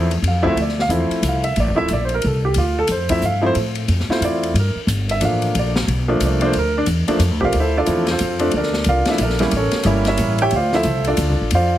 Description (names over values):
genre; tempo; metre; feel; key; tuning
jazz piano trio; 181 BPM; 3/4; swing 63% on 8ths; D minor; A4 = 442 Hz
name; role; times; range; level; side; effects
warm baby grand piano; melody; 0.0-11.8 s; D2 to G5; -19 LUFS; right 1 dB; plate reverb
upright bass; bass; 0.0-11.8 s; D1 to A2; -20 LUFS; equal; none
open jazz drum kit; drums; 0.1-11.6 s; hi-hat, kick drum, ride cymbal, snare drum; -26 LUFS; left 3 dB; none
room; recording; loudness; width
light reverb; heavily compressed radio sound, multiband compression; -16 LUFS; side -12 dB against mid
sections
0.6-11.8 A section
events
grand piano solo 0.0-11.8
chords
0.0 Dm9; 4.6 Gm7; 7.5 Dm9; 8.5 Bbmaj7; 9.5 A7b9; 10.5 Dm9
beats
0.23 | 0.57 0.90 1.23 | 1.56 1.89 2.23 | 2.56 2.89 3.22 | 3.56 3.89 4.22 | 4.55 4.88 5.21 | 5.55 5.88 6.21 | 6.54 6.87 7.21 | 7.54 7.87 8.20 | 8.53 8.86 9.19 | 9.52 9.85 10.19 | 10.52 10.85 11.18 | 11.51